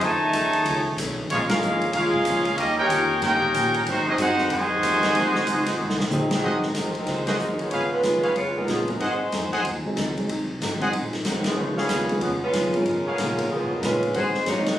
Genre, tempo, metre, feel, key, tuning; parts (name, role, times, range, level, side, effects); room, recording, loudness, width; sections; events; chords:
jazz, big band swing; 187 BPM; 4/4; swing 62% on 8ths; Ab major, Ab mixolydian from 6.4 s; A4 = 439 Hz
clear trumpet section; melody; 0.0-6.1 s; Ab3 to A5; -22 LUFS; equal
mellow trombone section; second line; 0.0-6.1 s; C3 to G4; -26 LUFS; equal
hollow-body jazz guitar; accompaniment; 0.0-14.7 s; F2 to G4; -32 LUFS; left 1 dB
upright bass; bass; 0.0-14.8 s; Ab1 to Cb3; -34 LUFS; equal
swinging big-band drum kit; drums; 0.0-14.7 s; hi-hat, kick drum, ride cymbal, snare drum, toms; -29 LUFS; equal
warm saxophone section; melody; 6.1-14.8 s; Db3 to Eb5; -25 LUFS; equal
dark upright piano; accompaniment; 6.4-14.7 s; Eb3 to Ab4; -28 LUFS; right 1 dB
warm trumpet section; stabs; 6.4-14.3 s; Cb4 to Gb5; -28 LUFS; equal
moderate club reverb, RT60 0.8 s; recorded on a phone in the room, club reverb, compression; -21 LUFS; side -12 dB against mid
0.0-6.4 A section; 6.4-14.8 B section
band accent 1.5, 6.3, 7.2, 11.4, 14.6; drum fill 5.8-6.4
0.0 F7alt; 1.3 Bbm7; 2.6 Eb7; 3.9 Ab7; 7.7 Db7; 9.0 Ab7; 11.6 Db7; 14.1 Ab7